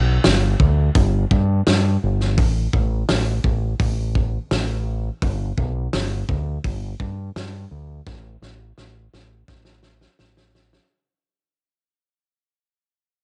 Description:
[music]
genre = rock, shoegaze and dream pop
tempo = 84 BPM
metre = 4/4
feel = straight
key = G major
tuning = A4 = 440 Hz
[part]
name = growling fingered electric bass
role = bass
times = 0.0-10.8 s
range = G1 to G2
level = -23 LUFS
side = equal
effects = overdrive
[part]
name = loose indie drum kit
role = drums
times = 0.2-10.9 s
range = hi-hat, kick drum, snare drum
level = -23 LUFS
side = equal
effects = cassette tape
[sound]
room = little or no reverb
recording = home recording on cassette, nothing above 11.0 kHz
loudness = -21 LUFS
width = mono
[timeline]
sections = 0.0-10.9 A section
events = fade-out 0.0-10.9; drum fill 8.1-10.9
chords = none

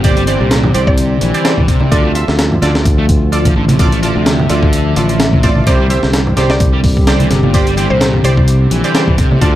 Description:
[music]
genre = breakbeat, breaks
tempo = 128 BPM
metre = 4/4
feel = swing 55% on 16ths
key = C mixolydian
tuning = A4 = 440 Hz
[part]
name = warbly tape-like pad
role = sustained chords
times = 0.0-9.6 s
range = D3 to E5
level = -20 LUFS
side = equal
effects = chorus, built-in reverb, vintage 12-bit sampler grit, sidechain pumping
[part]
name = fuzz guitar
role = riff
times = 0.0-9.5 s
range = Bb2 to C4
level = -17 LUFS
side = equal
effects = distortion
[part]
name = orchestra-hit-like synth stab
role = stabs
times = 0.0-9.6 s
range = F4 to E5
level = -19 LUFS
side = right 2 dB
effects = built-in reverb, dub echo
[part]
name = modern bright fingered electric bass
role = bass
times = 0.0-9.6 s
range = G1 to D2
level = -15 LUFS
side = equal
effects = tube saturation
[part]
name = breakbeat sampler-style drum kit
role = drums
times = 0.0-9.5 s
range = hi-hat, kick drum, snare drum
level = -14 LUFS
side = equal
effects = none
[part]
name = congas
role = percussion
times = 0.6-9.4 s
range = none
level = -18 LUFS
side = right 1 dB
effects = none
[part]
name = mallet-like synth pluck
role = melody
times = 0.9-1.3, 6.5-8.6 s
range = C5 to D5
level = -22 LUFS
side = left 1 dB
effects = chorus, old record sound, vintage 12-bit sampler grit, dub echo
[sound]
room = light reverb, digital ambience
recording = vinyl crackle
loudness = -9 LUFS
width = side -13 dB against mid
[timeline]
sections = 0.0-9.6 A section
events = none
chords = 0.0 Csus2; 1.9 Dm; 5.7 Csus2

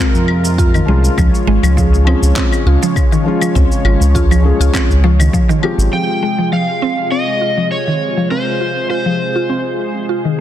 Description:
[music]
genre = organic downtempo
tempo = 101 BPM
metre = 4/4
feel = swing 54% on 16ths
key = F minor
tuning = A4 = 440 Hz
[part]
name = felt-muted upright piano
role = accompaniment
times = 0.0-10.4 s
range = C3 to Ab4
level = -22 LUFS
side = left 3 dB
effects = sidechain pumping, tape echo
[part]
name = warm analog pad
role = sustained chords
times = 0.0-10.4 s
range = C3 to Db5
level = -22 LUFS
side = left 1 dB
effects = chorus, tremolo, sidechain pumping
[part]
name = mallet-like synth pluck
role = arpeggios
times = 0.0-10.4 s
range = Eb3 to F4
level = -18 LUFS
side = equal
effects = chorus, tape echo
[part]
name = smooth synth bass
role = bass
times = 0.1-5.9 s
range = Ab1 to F2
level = -12 LUFS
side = equal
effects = sidechain pumping
[part]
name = electronic shaker, claves and handclaps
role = drums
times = 0.1-10.4 s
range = none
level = -23 LUFS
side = left 3 dB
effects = low-pass filter on perc, soft clipping on snare, low-pass filter on snare
[part]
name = electronic kick drum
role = drums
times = 0.6-5.5 s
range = none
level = -15 LUFS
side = equal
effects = overdrive
[part]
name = overdriven slide guitar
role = melody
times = 5.9-10.0 s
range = C5 to G5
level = -18 LUFS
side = right 1 dB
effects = tape echo
[sound]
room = light reverb, digital ambience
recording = dense, heavily limited modern master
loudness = -11 LUFS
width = side -11 dB against mid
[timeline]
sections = 0.0-5.9 A section; 5.9-10.4 B section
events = filter sweep on synth pluck 5.9-10.4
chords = 0.0 Fm; 1.2 Db; 5.9 Fm

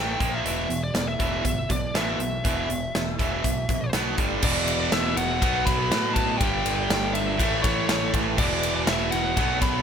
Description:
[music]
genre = hard rock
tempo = 121 BPM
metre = 4/4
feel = straight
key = E minor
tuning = A4 = 443 Hz
[part]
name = biting lead guitar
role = melody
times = 0.0-9.8 s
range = C#5 to B5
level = -29 LUFS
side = left 1 dB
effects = overdrive, slapback echo
[part]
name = distorted electric guitar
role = riff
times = 0.0-9.8 s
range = E2 to B3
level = -31 LUFS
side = left 16 dB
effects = overdrive
[part]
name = distorted electric guitar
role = riff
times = 0.0-9.8 s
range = E2 to B3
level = -28 LUFS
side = right 11 dB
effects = overdrive
[part]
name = growling picked electric bass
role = bass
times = 0.0-9.8 s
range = E1 to A2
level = -31 LUFS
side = equal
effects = overdrive
[part]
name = big rock drum kit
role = drums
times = 0.2-9.7 s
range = crash cymbal, hi-hat, kick drum, ride cymbal, snare drum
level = -26 LUFS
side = equal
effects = none
[sound]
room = studio reverb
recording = none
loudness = -22 LUFS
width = side -7 dB against mid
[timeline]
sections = 0.0-4.4 A section; 4.4-9.8 B section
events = none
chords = 0.2 A#5; 0.4 E5; 3.9 B5; 4.2 G5; 4.4 E5; 5.4 B5; 6.4 G5; 7.4 A; 8.4 E5

